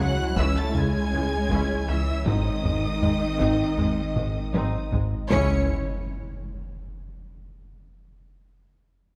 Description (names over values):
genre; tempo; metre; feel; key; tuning
cinematic, hybrid orchestral and electronic film score; 79 BPM; 4/4; straight; C# minor; A4 = 439 Hz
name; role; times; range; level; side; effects
warm symphonic violin section; melody; 0.0-5.7 s; D#6 to C#7; -38 LUFS; equal; none
warm symphonic violin section; second line; 0.0-5.7 s; C#5 to A5; -38 LUFS; equal; none
warm chamber viola section; accompaniment; 0.0-5.7 s; D#3 to E4; -35 LUFS; equal; none
hollow soft pad; sustained chords; 0.0-5.7 s; G#3 to D#5; -34 LUFS; equal; ensemble chorus
warm French horn section; sustained chords; 0.0-5.6 s; C#4 to A4; -35 LUFS; equal; none
rubbery square bass; riff; 0.0-5.2 s; C#2 to G#3; -31 LUFS; equal; none
rich symphonic cello section; bass; 0.0-5.7 s; D#3 to C#4; -35 LUFS; equal; none
saturated sub bass; bass; 0.0-5.7 s; G#1 to C#2; -33 LUFS; equal; none
warm symphonic double bass section; bass; 0.0-5.7 s; G#1 to C#2; -34 LUFS; equal; none
taiko ensemble; drums; 0.4-6.8 s; none; -32 LUFS; equal; none
impact; sound effects; 5.3-8.3 s; none; -35 LUFS; equal; none
room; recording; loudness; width
moderate scoring stage reverb, RT60 1.7 s; none; -25 LUFS; mono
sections
0.0-5.3 A section; 5.3-8.3 B section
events
drum fill 4.2-5.3; impact 5.3-8.3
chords
0.0 C#m; 2.3 G#; 5.3 C#m